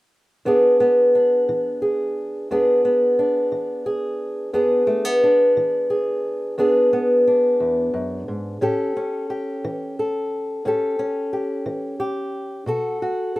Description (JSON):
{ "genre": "blues", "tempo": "59 BPM (dotted quarters)", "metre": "12/8", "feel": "straight", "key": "E mixolydian", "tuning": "A4 = 438 Hz", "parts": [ { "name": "fingerpicked old ladder-braced acoustic guitar", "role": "accompaniment", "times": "0.5-13.4 s", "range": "E2 to A4", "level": "-18 LUFS", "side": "equal", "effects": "none" } ], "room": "little or no reverb", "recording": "rough home demo mix", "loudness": "-18 LUFS", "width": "side -18 dB against mid", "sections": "0.5-13.4 A section", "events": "none", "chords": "0.5 E7; 8.6 A7; 12.7 B7(no3)", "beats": "| 0.47 1.49 2.51 3.53 | 4.54 5.56 6.58 7.60 | 8.62 9.63 10.65 11.66 | 12.67" }